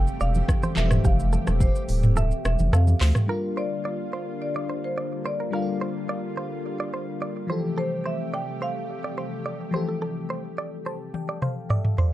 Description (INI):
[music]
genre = afrobeats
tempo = 107 BPM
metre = 4/4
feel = straight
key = F major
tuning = A4 = 440 Hz
[part]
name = marimba with medium mallets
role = melody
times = 0.0-11.7 s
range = Bb4 to G5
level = -32 LUFS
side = right 1 dB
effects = digital delay, plate reverb
[part]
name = bell-like FM electric piano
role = accompaniment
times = 0.0-12.1 s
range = E3 to A5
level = -32 LUFS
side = left 4 dB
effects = chorus, tremolo
[part]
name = lush unison pad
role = sustained chords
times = 0.0-12.1 s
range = C3 to G4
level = -34 LUFS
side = equal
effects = chorus
[part]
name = direct-recorded clean electric guitar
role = riff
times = 0.0-12.1 s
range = G4 to D5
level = -33 LUFS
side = right 4 dB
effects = digital delay
[part]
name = saturated sub bass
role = bass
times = 0.0-3.1 s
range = D1 to F2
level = -21 LUFS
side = equal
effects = none
[part]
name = afro-pop drum kit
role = drums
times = 0.1-3.3, 11.1-12.1 s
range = handclaps, hi-hat, kick drum, rim click, shaker, toms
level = -23 LUFS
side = equal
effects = none
[part]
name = congas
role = percussion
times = 0.4-3.0 s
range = none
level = -30 LUFS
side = right 2 dB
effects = none
[sound]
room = light reverb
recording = dark, warm production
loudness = -23 LUFS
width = side -14 dB against mid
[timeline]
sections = 0.0-3.3 A section; 3.3-12.1 B section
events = kick muted 2.2-3.3; FM electric piano fill 10.6-12.1; drum fill 11.1-12.1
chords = 0.0 Fmaj9; 3.3 Gm7; 7.5 Fmaj9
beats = 0.49 | 1.05 1.61 2.17 2.73 | 3.29 3.85 4.41 4.97 | 5.53 6.09 6.65 7.21 | 7.78 8.34 8.90 9.46 | 10.02 10.58 11.14 11.70